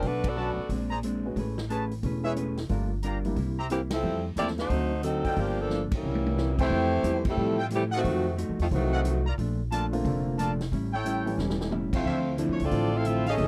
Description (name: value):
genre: jazz, big band swing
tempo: 180 BPM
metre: 4/4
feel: swing 64% on 8ths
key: F major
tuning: A4 = 439 Hz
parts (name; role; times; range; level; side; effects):
- clear saxophone section; melody; 0.0-0.9, 3.7-9.2, 12.0-13.5 s; Eb3 to F5; -32 LUFS; equal; none
- hollow-body jazz guitar; accompaniment; 0.0-13.5 s; F2 to B4; -36 LUFS; equal; none
- upright bass; bass; 0.0-13.5 s; E1 to A2; -33 LUFS; equal; none
- swinging big-band drum kit; drums; 0.0-13.5 s; crash cymbal, hi-hat, kick drum, ride cymbal, snare drum, toms; -37 LUFS; equal; none
- warm concert grand piano; accompaniment; 0.4-4.9, 7.0-13.5 s; D3 to G#4; -35 LUFS; equal; none
- clear trumpet section; stabs; 0.4-13.3 s; D4 to Bb5; -34 LUFS; equal; none
- mellow trombone section; second line; 5.9-9.2, 11.9-13.5 s; G2 to Gb4; -35 LUFS; equal; none
room: little or no reverb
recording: dry, close 1970s-style studio recording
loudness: -28 LUFS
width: mono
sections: 0.0-6.7 A section; 6.7-13.5 B section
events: band accent 0.2, 3.9, 5.9, 7.2, 11.9; drum fill 5.7-6.4, 11.4-12.0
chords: 0.0 Bm7; 0.7 Bb9; 1.4 Amaj9; 2.7 Gm7; 3.4 C7; 4.0 Fmaj7; 4.7 D7b9; 5.4 Gm7; 6.0 C7b9; 6.7 Fmaj9; 8.0 F7b9; 9.4 Bbmaj7; 10.7 A7; 12.0 Dm9